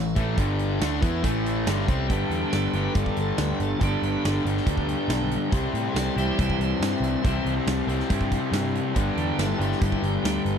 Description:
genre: classic rock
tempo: 140 BPM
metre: 4/4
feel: straight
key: unclear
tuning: A4 = 441 Hz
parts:
  - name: tonewheel organ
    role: sustained chords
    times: 0.0-10.6 s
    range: D3 to E5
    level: -32 LUFS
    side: right 2 dB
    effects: slow rotary speaker, overdrive
  - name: cranked stack guitar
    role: riff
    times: 0.0-10.6 s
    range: G2 to E4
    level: -28 LUFS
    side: left 14 dB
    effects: overdrive
  - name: raw garage guitar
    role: riff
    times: 0.0-10.6 s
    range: G2 to G4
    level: -30 LUFS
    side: right 17 dB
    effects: overdrive
  - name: picked electric bass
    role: bass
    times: 0.0-10.6 s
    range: G1 to A2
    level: -28 LUFS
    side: right 1 dB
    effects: none
  - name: big rock drum kit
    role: drums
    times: 0.2-10.6 s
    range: hi-hat, kick drum, snare drum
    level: -29 LUFS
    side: right 1 dB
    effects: none
room: little or no reverb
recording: dry, close 1970s-style studio recording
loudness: -22 LUFS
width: side -7 dB against mid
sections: 0.0-2.1 A section; 2.1-10.6 B section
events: tonewheel organ solo 2.1-10.6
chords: 0.4 G5; 0.8 A; 2.1 G; 5.5 C; 9.0 G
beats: | 0.38 0.81 1.24 1.67 | 2.09 2.52 2.95 3.38 | 3.81 4.24 4.67 5.09 | 5.52 5.95 6.38 6.81 | 7.24 7.67 8.10 8.53 | 8.96 9.38 9.81 10.24

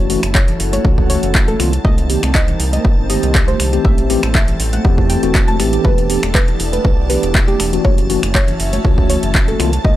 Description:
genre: deep house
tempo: 120 BPM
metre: 4/4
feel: swing 53% on 16ths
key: unclear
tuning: A4 = 440 Hz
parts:
  - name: soft round pluck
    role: melody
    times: 0.0-10.0 s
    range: G4 to A5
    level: -24 LUFS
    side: right 1 dB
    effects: chorus, tape echo
  - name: warbly tape-like pad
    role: sustained chords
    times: 0.0-10.0 s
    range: G3 to D5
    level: -29 LUFS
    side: right 2 dB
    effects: chorus, built-in reverb, sidechain pumping
  - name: mellow tine electric piano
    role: stabs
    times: 0.0-9.7 s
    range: Eb3 to G4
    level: -20 LUFS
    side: left 1 dB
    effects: medium stereo tremolo, sidechain pumping
  - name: round analog bass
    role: bass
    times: 0.0-10.0 s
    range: E1 to E2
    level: -19 LUFS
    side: equal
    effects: sidechain pumping
  - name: airy breathy pad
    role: texture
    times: 0.0-10.0 s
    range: C4 to A5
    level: -28 LUFS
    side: left 1 dB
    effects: chorus, sidechain pumping
  - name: string machine, violins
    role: texture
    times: 0.0-10.0 s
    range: A5 to A6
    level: -32 LUFS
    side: equal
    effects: ensemble chorus, sidechain pumping
  - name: deep house drum kit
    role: drums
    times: 0.1-9.8 s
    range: finger snaps, handclaps, hi-hat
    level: -21 LUFS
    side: equal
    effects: overdrive
  - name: congas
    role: percussion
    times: 0.2-10.0 s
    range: none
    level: -26 LUFS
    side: right 3 dB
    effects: none
  - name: electronic kick drum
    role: drums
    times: 0.3-10.0 s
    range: none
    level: -14 LUFS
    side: equal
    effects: none
room: digital ambience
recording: dry, gritty hardware recording, transformer saturation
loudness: -12 LUFS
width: side -14 dB against mid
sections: 0.0-10.0 A section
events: none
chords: 0.0 F#m7; 1.6 Cm7; 3.8 Am7; 5.8 Em7; 7.8 F#m7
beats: 0.35 0.85 1.35 | 1.85 2.35 2.85 3.35 | 3.85 4.35 4.85 5.35 | 5.85 6.35 6.85 7.35 | 7.85 8.35 8.85 9.35 | 9.85

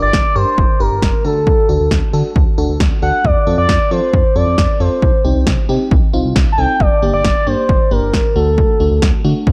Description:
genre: synth-pop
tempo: 135 BPM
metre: 4/4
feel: straight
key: G minor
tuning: A4 = 441 Hz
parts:
  - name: expressive portamento lead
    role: melody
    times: 0.0-9.0 s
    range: A4 to A5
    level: -19 LUFS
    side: equal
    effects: chorus, delay
  - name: FM electric piano with soft pad layer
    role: accompaniment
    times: 0.0-9.4 s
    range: A3 to Bb4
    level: -24 LUFS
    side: equal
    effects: chorus
  - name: chorused synth bass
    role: bass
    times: 0.0-9.5 s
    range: G1 to F3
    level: -20 LUFS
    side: equal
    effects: none
  - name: punchy analog drum machine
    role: drums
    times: 0.1-9.5 s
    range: kick drum, snare drum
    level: -18 LUFS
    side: equal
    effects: none
room: light reverb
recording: dark, warm production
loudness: -14 LUFS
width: mono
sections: 0.0-9.5 A section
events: none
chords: 0.0 Gm; 1.2 D; 3.2 F; 5.0 Cm; 6.8 Gm; 8.4 D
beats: 0.13 0.58 1.02 | 1.47 1.91 2.36 2.80 | 3.25 3.69 4.13 4.58 | 5.02 5.47 5.91 6.36 | 6.80 7.25 7.69 8.13 | 8.58 9.02 9.47

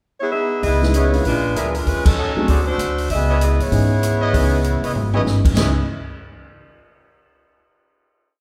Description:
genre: jazz, big band swing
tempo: 194 BPM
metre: 4/4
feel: swing 61% on 8ths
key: C# minor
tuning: A4 = 436 Hz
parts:
  - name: mellow saxophone section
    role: melody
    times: 0.2-5.3 s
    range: E#3 to E5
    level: -23 LUFS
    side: equal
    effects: none
  - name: upright bass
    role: bass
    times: 0.6-5.7 s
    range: G#1 to G#2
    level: -22 LUFS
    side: equal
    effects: none
  - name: open jazz drum kit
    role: drums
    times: 0.6-5.7 s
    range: crash cymbal, hi-hat, kick drum, rim click, snare drum, toms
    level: -24 LUFS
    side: equal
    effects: none
  - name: dark upright piano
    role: accompaniment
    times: 0.8-5.7 s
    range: E3 to G#4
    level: -27 LUFS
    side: equal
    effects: none
  - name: warm trumpet section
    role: stabs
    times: 0.9-5.7 s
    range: E4 to E5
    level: -30 LUFS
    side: equal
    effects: none
room: wet recital hall reverb, RT60 1.5 s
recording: recorded in a church or concert hall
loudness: -18 LUFS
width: mono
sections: 0.0-0.6 pickup bar; 0.6-5.6 A section; 5.6-6.8 final chord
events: band accent 2.0; drum fill 5.0-5.3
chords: 0.0 B6; 0.6 C#m9; 1.2 A#7b9; 1.9 D#m7b5; 2.5 D7#11; 3.1 C#m9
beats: 0.01 0.32 | 0.63 0.94 1.25 1.56 | 1.86 2.17 2.48 2.79 | 3.10 3.41 3.72 4.03 | 4.33 4.64 4.95 5.26 | 5.57

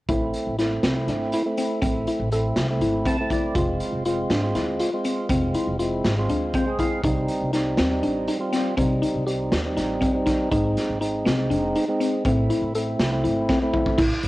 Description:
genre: progressive instrumental, band music in an uneven meter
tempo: 242 BPM (eighths)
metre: 7/8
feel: straight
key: A harmonic minor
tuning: A4 = 439 Hz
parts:
  - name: tonewheel organ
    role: accompaniment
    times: 0.1-14.0 s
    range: G3 to A5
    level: -25 LUFS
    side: right 1 dB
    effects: overdrive, slow rotary speaker, cassette tape
  - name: mallet-like synth pluck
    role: arpeggios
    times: 0.1-14.3 s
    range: C4 to A4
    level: -25 LUFS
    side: left 2 dB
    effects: chorus, cassette tape
  - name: upright bass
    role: bass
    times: 0.1-14.3 s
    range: F1 to Eb2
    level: -27 LUFS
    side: equal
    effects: none
  - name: raw garage drum kit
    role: drums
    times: 0.1-14.3 s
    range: crash cymbal, hi-hat, kick drum, snare drum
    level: -28 LUFS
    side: equal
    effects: cassette tape
room: light reverb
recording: home recording on cassette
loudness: -21 LUFS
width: side -18 dB against mid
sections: 0.1-14.0 A section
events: tonewheel organ fill 2.8-3.6, 6.3-7.0; drum fill 13.5-14.0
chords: 0.1 Am; 3.6 Fm; 7.0 Cm; 10.5 G#; 12.3 Am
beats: | 0.09 0.34 0.58 0.83 1.08 1.33 1.58 | 1.82 2.07 2.32 2.57 2.82 3.07 3.31 | 3.56 3.81 4.06 4.31 4.56 4.80 5.05 | 5.30 5.55 5.80 6.04 6.29 6.54 6.79 | 7.04 7.29 7.54 7.78 8.03 8.28 8.53 | 8.78 9.03 9.27 9.52 9.77 10.02 10.27 | 10.52 10.76 11.01 11.26 11.51 11.76 12.01 | 12.25 12.50 12.75 13.00 13.25 13.50 13.74 | 13.99 14.24

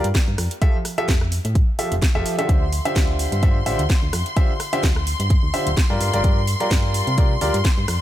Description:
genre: piano house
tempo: 128 BPM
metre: 4/4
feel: swing 55% on 16ths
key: D minor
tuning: A4 = 440 Hz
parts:
  - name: warm grand piano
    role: riff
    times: 0.0-7.6 s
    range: D3 to E5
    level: -24 LUFS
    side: equal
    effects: sidechain pumping, digital delay
  - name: solid FM bass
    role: bass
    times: 0.0-8.0 s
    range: D1 to C3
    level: -23 LUFS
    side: equal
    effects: sidechain pumping
  - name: house drum kit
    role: drums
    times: 0.0-8.0 s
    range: hi-hat, rim click, snare drum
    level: -27 LUFS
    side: right 1 dB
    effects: none
  - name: electronic kick drum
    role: drums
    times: 0.1-7.8 s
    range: none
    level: -18 LUFS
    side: equal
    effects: none
  - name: rich studio violin section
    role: sustained chords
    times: 2.5-8.0 s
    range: C6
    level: -28 LUFS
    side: left 3 dB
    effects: sidechain pumping
room: small room ambience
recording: none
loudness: -17 LUFS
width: side -13 dB against mid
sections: 0.0-8.0 A section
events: none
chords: 0.4 Fmaj9; 2.5 Dm11; 6.0 Gm7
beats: 0.15 | 0.62 1.08 1.55 2.02 | 2.49 2.96 3.43 3.90 | 4.37 4.83 5.30 5.77 | 6.24 6.71 7.18 7.65

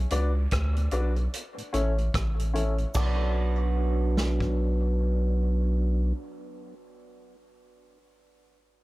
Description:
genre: dub reggae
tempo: 74 BPM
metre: 4/4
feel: swing 59% on 16ths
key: B minor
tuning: A4 = 439 Hz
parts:
  - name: warm sub bass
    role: bass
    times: 0.0-6.1 s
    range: A1 to D2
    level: -25 LUFS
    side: equal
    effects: none
  - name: mellow tonewheel organ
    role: accompaniment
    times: 0.1-6.1 s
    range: A2 to D4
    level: -36 LUFS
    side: equal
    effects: overdrive, chorus vibrato, slow rotary speaker, low-pass filter, dub echo
  - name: warm upright piano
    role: stabs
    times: 0.1-6.1 s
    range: C#4 to D5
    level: -34 LUFS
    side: left 3 dB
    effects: low-pass filter, dub echo
  - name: vintage drum kit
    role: drums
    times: 0.1-4.6 s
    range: crash cymbal, hi-hat, kick drum, rim click, snare drum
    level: -31 LUFS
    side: equal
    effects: none
  - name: clean electric guitar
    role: accompaniment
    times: 2.9-6.5 s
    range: D4 to B4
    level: -38 LUFS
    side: right 6 dB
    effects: low-pass filter, dub echo
  - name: cabasa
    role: percussion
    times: 2.9-3.3 s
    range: none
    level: -52 LUFS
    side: right 4 dB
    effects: none
  - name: bluegrass banjo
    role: melody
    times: 3.0-6.1 s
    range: D5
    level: -43 LUFS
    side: equal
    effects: none
room: studio reverb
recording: none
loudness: -24 LUFS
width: side -20 dB against mid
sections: 0.0-3.0 A section; 3.0-6.2 B section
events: break 0.0-3.0; filter sweep 0.0-3.0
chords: 0.0 Bm; 1.3 A; 3.0 Bm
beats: 0.52 1.33 2.14 | 2.95 3.76 4.57 5.38

